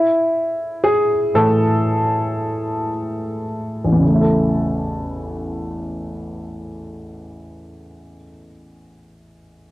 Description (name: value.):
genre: pop.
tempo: 53-61 BPM.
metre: 4/4.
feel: straight.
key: A major.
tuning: A4 = 440 Hz.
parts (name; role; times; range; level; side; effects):
warm baby grand piano; accompaniment; 0.0-9.7 s; A1 to A4; -18 LUFS; equal; cassette tape.
room: light reverb.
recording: home recording on cassette.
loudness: -17 LUFS.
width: side -16 dB against mid.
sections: 0.0-4.0 A section; 4.0-8.5 B section.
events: slowing down 0.0-4.0; grand piano solo 0.0-4.0.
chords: 0.0 A5; 4.0 A.